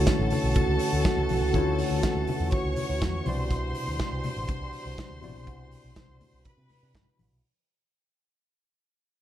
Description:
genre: disco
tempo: 122 BPM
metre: 4/4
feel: straight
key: unclear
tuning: A4 = 440 Hz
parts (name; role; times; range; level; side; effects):
- clear studio violin section; second line; 0.0-7.2 s; A4 to C#6; -34 LUFS; left 1 dB; none
- tine electric piano; accompaniment; 0.0-7.5 s; B2 to D5; -32 LUFS; left 4 dB; overdrive, auto-pan
- mellow French horn section; sustained chords; 0.0-7.4 s; E3 to F#4; -32 LUFS; right 3 dB; none
- picked electric bass with an envelope filter; bass; 0.0-7.4 s; G1 to C3; -30 LUFS; equal; none
- modern studio drum kit; drums; 0.1-7.3 s; hi-hat, kick drum, snare drum; -30 LUFS; right 1 dB; none
- congas; percussion; 0.1-7.3 s; none; -36 LUFS; left 4 dB; none
room: light reverb, studio ambience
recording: dark, warm production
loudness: -24 LUFS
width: side -12 dB against mid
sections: 0.0-7.4 A section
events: fade-out 0.0-7.4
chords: 0.0 Dmaj9; 3.3 Cmaj9#11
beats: 0.07 0.56 1.05 | 1.54 2.03 2.52 3.02 | 3.51 4.00 4.49 4.98 | 5.47 5.96 6.45 6.94

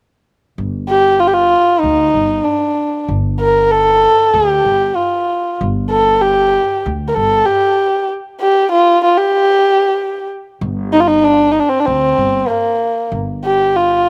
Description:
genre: turkish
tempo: 96 BPM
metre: 4/4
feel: straight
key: G makam nihavent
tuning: A4 = 440 Hz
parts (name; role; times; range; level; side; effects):
- upright bass; bass; 0.6-14.1 s; G1 to D2; -24 LUFS; equal; none
- dark kamancheh; melody; 0.9-14.1 s; Bb3 to Bb4; -14 LUFS; equal; none
room: little or no reverb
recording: recorded outdoors, with no room sound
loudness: -14 LUFS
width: mono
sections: 0.6-10.6 A section; 10.6-14.1 A section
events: none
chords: none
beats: | 0.58 1.21 1.83 2.46 | 3.09 3.71 4.34 4.97 | 5.60 6.22 6.85 7.48 | 8.11 8.73 9.36 9.99 | 10.62 11.24 11.87 12.50 | 13.13 13.76

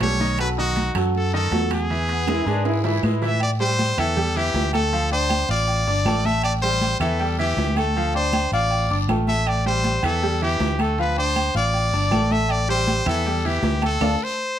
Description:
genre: latin, salsa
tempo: 159 BPM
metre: 4/4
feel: straight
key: A minor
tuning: A4 = 439 Hz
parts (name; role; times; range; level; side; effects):
- brilliant trumpet; melody; 0.0-14.6 s; F#4 to E5; -24 LUFS; left 1 dB; none
- bright grand piano; accompaniment; 0.0-14.1 s; D#3 to F6; -26 LUFS; equal; none
- fingered electric bass; bass; 0.0-14.1 s; G1 to A2; -24 LUFS; equal; none
- claves; percussion; 0.0-14.1 s; none; -35 LUFS; right 5 dB; none
- congas; percussion; 0.0-14.1 s; none; -28 LUFS; left 1 dB; none
- guiro; percussion; 0.0-14.1 s; none; -38 LUFS; left 6 dB; none
- timbales and agogo bells; percussion; 0.0-14.1 s; none; -29 LUFS; right 4 dB; none
- brilliant trombone section; second line; 2.1-3.4 s; B3 to E4; -27 LUFS; left 1 dB; none
room: moderate studio reverb, RT60 0.8 s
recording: none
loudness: -19 LUFS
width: side -10 dB against mid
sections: 0.0-3.4 A section; 3.4-14.6 B section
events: drum fill 2.3-3.4; band accent 14.0-14.6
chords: 0.4 B7; 1.9 E; 3.4 Am7; 4.9 Dm; 6.4 Am7; 8.0 Dm; 9.5 Am7; 11.0 Dm; 12.5 Am7; 14.0 Dm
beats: 0.01 | 0.39 0.77 1.14 1.52 | 1.90 2.28 2.66 3.04 | 3.41 3.79 4.17 4.55 | 4.92 5.30 5.68 6.06 | 6.44 6.82 7.19 7.57 | 7.95 8.33 8.71 9.09 | 9.46 9.84 10.22 10.60 | 10.98 11.36 11.74 12.12 | 12.49 12.87 13.25 13.63 | 14.01 14.39

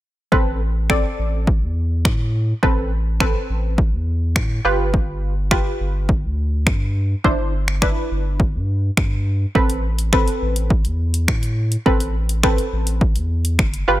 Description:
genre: dance-pop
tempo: 104 BPM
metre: 4/4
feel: straight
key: A minor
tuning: A4 = 442 Hz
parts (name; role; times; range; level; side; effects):
- punchy chord stab; accompaniment; 0.3-14.0 s; C4 to D5; -21 LUFS; right 1 dB; chorus, sidechain pumping
- warm sub bass; bass; 0.3-14.0 s; F#1 to A2; -20 LUFS; equal; sidechain pumping
- punchy analog drum machine; drums; 0.3-13.9 s; finger snaps, hi-hat, kick drum; -19 LUFS; equal; overdrive
room: little or no reverb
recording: none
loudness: -17 LUFS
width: side -15 dB against mid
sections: 0.3-14.0 A section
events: none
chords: 0.3 Amadd9; 4.6 G7; 7.2 Cadd9/G; 9.6 Amadd9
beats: | 0.32 0.90 1.48 2.05 | 2.63 3.21 3.78 4.36 | 4.94 5.51 6.09 6.67 | 7.25 7.82 8.40 8.98 | 9.55 10.13 10.71 11.28 | 11.86 12.44 13.01 13.59

